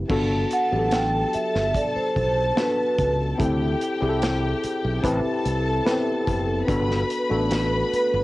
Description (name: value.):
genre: lush 1970s-style soul.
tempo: 73 BPM.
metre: 4/4.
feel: straight.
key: unclear.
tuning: A4 = 439 Hz.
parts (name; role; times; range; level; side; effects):
tine electric piano; accompaniment; 0.0-8.2 s; F#3 to B4; -25 LUFS; left 1 dB; analog chorus, cassette tape.
modern bright fingered electric bass; bass; 0.0-8.2 s; F#1 to D2; -26 LUFS; equal; none.
warm studio string section; second line; 0.1-8.2 s; G4 to B5; -28 LUFS; left 1 dB; cassette tape.
modern studio drum kit; drums; 0.1-8.1 s; crash cymbal, hi-hat, kick drum, snare drum; -29 LUFS; equal; none.
vibraphone with soft mallets; melody; 0.5-8.2 s; B4 to G5; -23 LUFS; right 2 dB; cassette tape.
room: light reverb.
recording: home recording on cassette.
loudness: -20 LUFS.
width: side -18 dB against mid.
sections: 0.1-8.2 A section.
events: none.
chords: 0.1 Gmaj7; 3.4 D7sus4; 5.0 Am7; 6.7 Gmaj7.